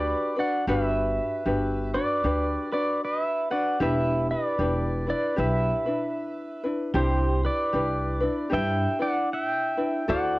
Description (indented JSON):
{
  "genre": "Hawaiian",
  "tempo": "76 BPM",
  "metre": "4/4",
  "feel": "swing 62% on 8ths",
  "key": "G major",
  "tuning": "A4 = 440 Hz",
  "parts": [
    { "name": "pedal steel guitar", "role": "melody", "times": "0.0-10.4 s", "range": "G4 to G5", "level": "-27 LUFS", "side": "right 1 dB", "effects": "cassette tape" },
    { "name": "ukulele", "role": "accompaniment", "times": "0.0-10.4 s", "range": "D4 to C5", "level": "-28 LUFS", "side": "left 1 dB", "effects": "cassette tape" },
    { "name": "upright bass", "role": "bass", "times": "0.0-10.4 s", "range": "E1 to G2", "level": "-28 LUFS", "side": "equal", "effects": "none" }
  ],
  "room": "light reverb",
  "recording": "home recording on cassette",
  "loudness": "-23 LUFS",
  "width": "side -20 dB against mid",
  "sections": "0.7-10.4 A section",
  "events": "none",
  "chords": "0.0 Gmaj7; 3.8 Em7; 6.9 Cmaj9",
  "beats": "| 0.67 1.46 2.24 3.02 | 3.81 4.59 5.38 6.16 | 6.95 7.73 8.52 9.30 | 10.09"
}